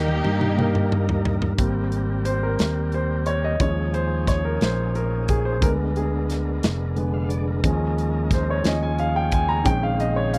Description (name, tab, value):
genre	slow gospel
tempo	59 BPM (dotted quarters)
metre	6/8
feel	straight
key	Ab major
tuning	A4 = 439 Hz
part	warm symphonic string section	melody	0.0-1.3 s	Bb3 to G4	-30 LUFS	equal	slapback echo
part	warm baby grand piano	accompaniment	0.0-10.4 s	D3 to Bb5	-27 LUFS	equal	none
part	tonewheel organ	sustained chords	0.0-10.4 s	Db3 to F5	-35 LUFS	equal	slow rotary speaker, overdrive
part	fingered electric bass	bass	0.0-10.4 s	F1 to G2	-26 LUFS	equal	none
part	modern studio drum kit	drums	0.1-10.4 s	hi-hat, kick drum, snare drum, toms	-26 LUFS	equal	none
room	little or no reverb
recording	dry, close 1970s-style studio recording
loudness	-23 LUFS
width	mono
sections	0.0-1.6 A section; 1.6-10.4 B section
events	drum fill 0.0-1.6; grand piano solo 1.6-10.4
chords	0.0 Eb; 1.6 Abmaj9; 3.6 Eb9sus4; 5.6 Bb7b9/D; 7.6 Eb7sus4; 8.7 Eb9sus4; 9.7 Bbm11